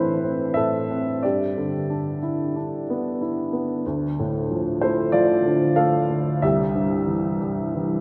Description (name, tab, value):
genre	classical, lyrical solo piano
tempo	92 BPM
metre	4/4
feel	rubato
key	unclear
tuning	A4 = 440 Hz
part	warm upright piano	solo	0.0-8.0 s	C2 to F5	-23 LUFS	equal	none
room	wet cathedral reverb, RT60 4.2 s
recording	recorded in a church or concert hall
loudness	-23 LUFS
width	mono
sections	0.0-8.0 A section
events	none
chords	0.0 Am; 1.2 G6; 3.8 Dm; 6.4 C